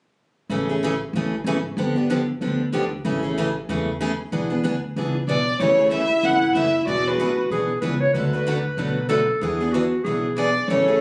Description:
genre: acoustic string swing (jazz manouche)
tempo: 188 BPM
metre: 4/4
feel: swing 58% on 8ths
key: A major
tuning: A4 = 440 Hz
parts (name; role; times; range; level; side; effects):
- picked steel-string acoustic guitar; accompaniment; 0.5-11.0 s; C#3 to B4; -26 LUFS; equal; none
- upright bass; bass; 0.5-10.9 s; E1 to B2; -32 LUFS; equal; none
- warm violin; melody; 5.3-7.4, 10.4-11.0 s; B4 to F#5; -22 LUFS; equal; none
- breathy clarinet; second line; 5.6-11.0 s; E4 to C#5; -26 LUFS; equal; none
room: moderate studio reverb, RT60 0.7 s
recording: recorded on a phone in the room, club reverb, compression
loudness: -22 LUFS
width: mono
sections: 0.5-5.6 A section; 5.6-11.0 B section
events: none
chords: 0.5 Amaj7; 1.8 G7; 3.0 Amaj7; 4.3 E7; 5.6 Amaj7; 6.9 E7; 8.1 Bm7/D; 9.4 E7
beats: | 0.49 0.81 1.13 1.45 | 1.77 2.09 2.41 2.73 | 3.05 3.37 3.68 4.00 | 4.32 4.64 4.96 5.28 | 5.59 5.91 6.23 6.55 | 6.87 7.19 7.50 7.82 | 8.14 8.46 8.78 9.10 | 9.41 9.73 10.05 10.37 | 10.69

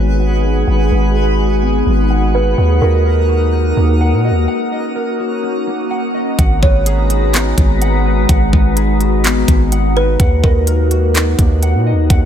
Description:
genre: hip hop, atmospheric cloud-rap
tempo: 126 BPM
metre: 4/4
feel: half-time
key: unclear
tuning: A4 = 440 Hz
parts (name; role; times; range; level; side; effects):
- glassy FM pad; sustained chords; 0.0-12.3 s; Ab3 to Bb5; -18 LUFS; left 1 dB; ensemble chorus, built-in reverb, sidechain pumping, low-pass filter
- mellow electric guitar; arpeggios; 0.0-12.3 s; Ab3 to Gb5; -22 LUFS; left 1 dB; analog chorus, low-pass filter, tape echo
- long sustained 808-style bass; bass; 0.0-12.3 s; Ab1 to Bb2; -14 LUFS; equal; none
- twinkling granular texture; texture; 0.0-6.3 s; Ab4 to Eb6; -26 LUFS; right 1 dB; built-in reverb
- kalimba; melody; 2.3-3.5, 6.6-11.1 s; Bb4 to Db5; -22 LUFS; right 4 dB; low-pass filter, tape echo
- trap drum kit; drums; 6.4-12.2 s; handclaps, hi-hat, kick drum; -13 LUFS; equal; none
room: light reverb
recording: none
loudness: -11 LUFS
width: side -9 dB against mid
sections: 0.0-6.4 A section; 6.4-12.3 B section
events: filter sweep 0.0-6.4; break 4.5-6.4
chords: 0.0 Abm7; 2.6 Ebm; 6.4 Abm7; 10.2 Ebm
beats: 0.20 | 0.67 1.15 1.62 2.10 | 2.58 3.05 3.53 4.01 | 4.48 4.96 5.43 5.91 | 6.39 6.86 7.34 7.82 | 8.29 8.77 9.24 9.72 | 10.20 10.67 11.15 11.62 | 12.10

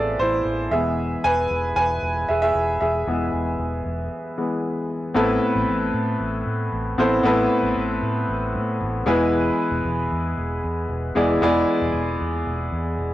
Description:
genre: piano-driven pop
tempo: 115 BPM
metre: 4/4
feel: straight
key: A harmonic minor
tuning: A4 = 440 Hz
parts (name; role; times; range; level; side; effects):
- clear concert grand piano; accompaniment; 0.0-13.1 s; A2 to A5; -20 LUFS; equal; none
- vintage muted fingered electric bass; bass; 0.0-13.1 s; E1 to A2; -28 LUFS; equal; none
room: moderate spring reverb, RT60 1.9 s, studio reverb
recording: home recording on cassette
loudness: -20 LUFS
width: side -14 dB against mid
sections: 0.0-5.2 A section; 5.2-13.1 B section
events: grand piano solo 0.0-5.2; stop 4.1-5.2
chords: 0.0 Amadd9; 0.7 E; 5.2 Amadd9; 9.1 E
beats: 0.46 | 0.98 1.51 2.03 2.55 | 3.07 3.59 4.12 4.64 | 5.16 5.68 6.20 6.72 | 7.25 7.77 8.29 8.81 | 9.33 9.86 10.38 10.90 | 11.42 11.94 12.46 12.98

